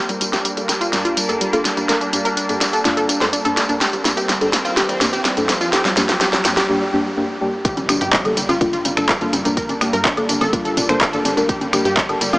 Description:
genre	progressive house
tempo	125 BPM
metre	4/4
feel	straight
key	G minor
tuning	A4 = 435 Hz
part	supersaw pad	sustained chords	0.0-12.4 s	G3 to D4	-26 LUFS	equal	phaser, sidechain pumping
part	wide unison pluck	arpeggios	0.0-12.4 s	G3 to C5	-22 LUFS	equal	cassette tape, sidechain pumping, digital delay
part	deep mellow chord stab	stabs	0.0-12.2 s	G2 to Bb4	-23 LUFS	left 1 dB	chorus, sidechain pumping, digital delay
part	riser and impact	sound effects	0.1-9.6 s	none	-30 LUFS	equal	none
part	tight sequencer bass	bass	0.1-12.4 s	F1 to G2	-29 LUFS	equal	sidechain pumping, high-pass filter
part	pop drum kit	drums	0.1-12.4 s	finger snaps, handclaps, hi-hat, snare drum, tambourine	-19 LUFS	equal	high-pass filter on perc, small room ambience, high-pass filter on snare, high-pass filter on hats
part	electronic kick drum	drums	7.6-12.1 s	none	-23 LUFS	equal	small room ambience
part	electronic congas, woodblock and toms	percussion	7.8-12.4 s	none	-24 LUFS	equal	sidechain pumping on perc, small room ambience, sidechain pumping on toms
room	moderate huge ambient reverb, RT60 7.7 s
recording	small speaker sound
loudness	-15 LUFS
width	side -22 dB against mid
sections	0.0-7.7 A section; 7.7-12.4 B section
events	build-up 0.0-7.7; drum fill 0.0-6.7; filter sweep on synth stab 0.0-7.7; riser 0.1-6.7; break 6.7-7.7; drop 7.7-12.4; impact 7.7-9.6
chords	0.0 Gm

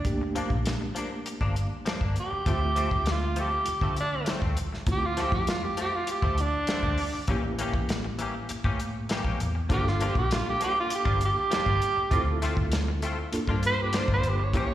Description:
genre	straight-eighth soul blues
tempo	99 BPM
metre	4/4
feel	straight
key	D minor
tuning	A4 = 440 Hz
part	breathy tenor saxophone	melody	0.0-14.7 s	D4 to C#5	-28 LUFS	right 2 dB	slapback echo
part	reed electric piano	accompaniment	0.0-14.7 s	A3 to E5	-35 LUFS	right 2 dB	fast tremolo, slapback echo
part	vintage muted fingered electric bass	bass	0.0-14.7 s	G1 to D3	-29 LUFS	equal	none
part	warm soul drum kit	drums	0.0-14.7 s	hi-hat, kick drum, snare drum	-30 LUFS	equal	none
part	direct-recorded clean electric guitar	stabs	0.2-14.7 s	E3 to G4	-35 LUFS	left 4 dB	analog chorus, slapback echo
room	light reverb, small room ambience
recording	live gig heard through the venue's PA, recital hall reverb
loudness	-25 LUFS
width	side -13 dB against mid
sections	0.0-14.7 A section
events	tenor saxophone solo 0.0-14.7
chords	0.0 Gm7; 2.5 Dm7; 7.3 A7b9; 9.7 Gm7; 12.1 Dm7; 13.3 Gm7

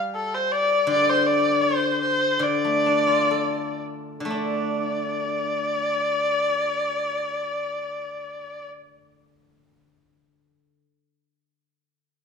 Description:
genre	chinese traditional, Chinese chamber ensemble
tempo	55-84 BPM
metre	2/4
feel	rubato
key	D yu mode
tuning	A4 = 440 Hz
part	steel-string zither	accompaniment	0.0-10.8 s	D3 to A4	-27 LUFS	left 2 dB	none
part	rich erhu	melody	0.1-8.7 s	A4 to D5	-22 LUFS	left 1 dB	none
room	moderate recital hall reverb, RT60 1.6 s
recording	small room ambience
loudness	-21 LUFS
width	side -6 dB against mid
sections	0.0-4.3 A section; 4.3-8.6 B section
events	slowing down 0.9-4.3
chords	none

